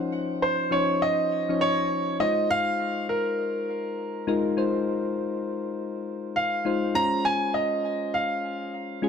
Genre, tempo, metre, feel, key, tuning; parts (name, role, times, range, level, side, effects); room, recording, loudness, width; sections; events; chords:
R&B; 101 BPM; 4/4; swing 63% on 16ths; A4 = 440 Hz
soft electric-piano-like synth keys; accompaniment; 0.0-9.1 s; F3 to Db5; -28 LUFS; left 4 dB; chorus
clear baby grand piano; melody; 0.4-9.0 s; Bb4 to Bb5; -25 LUFS; right 2 dB; tape echo
moderate plate reverb, RT60 2.5 s; -24 LUFS; side -7 dB against mid
0.0-2.2 A section; 2.2-9.1 B section
0.0 Dbmaj9; 2.2 Fm7; 6.9 Dbmaj7